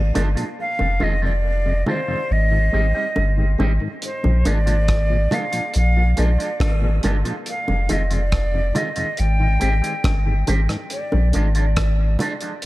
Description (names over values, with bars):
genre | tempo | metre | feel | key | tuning
dub reggae | 70 BPM | 4/4 | straight | unclear | A4 = 445 Hz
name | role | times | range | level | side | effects
breathy bright concert flute | melody | 0.0-11.5 s | C5 to G5 | -25 LUFS | equal | dub echo
warm sub bass | bass | 0.0-12.2 s | F1 to Bb1 | -18 LUFS | equal | none
electric guitar with an envelope filter | accompaniment | 0.1-12.5 s | Eb3 to G4 | -29 LUFS | right 3 dB | spring reverb, dub echo
mellow tonewheel organ | accompaniment | 0.1-10.8 s | F2 to Ab4 | -30 LUFS | left 1 dB | slow rotary speaker, dub echo
cloth-damped thuddy drum kit | drums | 0.2-12.7 s | hi-hat, kick drum, rim click | -26 LUFS | equal | none
bongos | percussion | 0.2-12.4 s | none | -29 LUFS | right 1 dB | dub echo
room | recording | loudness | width
studio reverb | echo-heavy mix | -17 LUFS | side -18 dB against mid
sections
0.0-12.7 A section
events
part muted 0.6-4.0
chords
0.0 Bb7; 0.6 Fm7; 2.3 Abmaj7; 4.0 Bb7; 7.5 Fm7; 9.2 Abmaj7; 10.9 Bb7 (rootless)